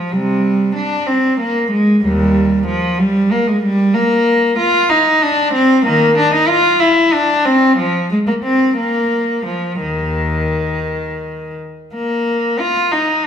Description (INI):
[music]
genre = classical, baroque-style suite movement for unaccompanied cello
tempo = 55-64 BPM (dotted quarters)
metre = 6/8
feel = rubato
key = unclear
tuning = A4 = 442 Hz
[part]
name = rich cello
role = solo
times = 0.0-13.3 s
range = Eb2 to F4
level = -13 LUFS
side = equal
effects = none
[sound]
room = wet stone room reverb, RT60 1.3 s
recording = heard from further back in the room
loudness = -12 LUFS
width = side -8 dB against mid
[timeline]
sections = 0.0-11.9 A section; 11.9-13.3 B section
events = none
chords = none